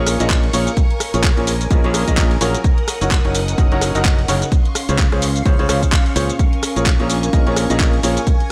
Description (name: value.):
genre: piano house.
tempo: 128 BPM.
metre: 4/4.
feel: swing 58% on 16ths.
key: Bb minor.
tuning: A4 = 440 Hz.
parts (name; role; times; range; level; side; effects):
string machine, violins; sustained chords; 0.0-8.5 s; Bb4 to Eb6; -30 LUFS; equal; ensemble chorus, sidechain pumping.
clear grand piano; riff; 0.0-8.2 s; Bb2 to Eb5; -24 LUFS; equal; sidechain pumping, digital delay.
modern bright fingered electric bass; bass; 0.0-8.2 s; Gb1 to Db2; -23 LUFS; equal; sidechain pumping.
warbly tape-like pad; texture; 0.1-8.5 s; Db4 to Ab5; -32 LUFS; equal; chorus, built-in reverb, sidechain pumping.
garage drum kit; drums; 0.1-8.5 s; handclaps, hi-hat, rim click, shaker; -25 LUFS; equal; none.
electronic kick drum; drums; 0.3-8.4 s; none; -18 LUFS; equal; none.
room: digital ambience.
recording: none.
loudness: -16 LUFS.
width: mono.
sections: 0.0-8.5 A section.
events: none.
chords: 0.0 Bbm7; 2.6 Gb6; 4.5 Dbmaj7; 6.4 Bbm7.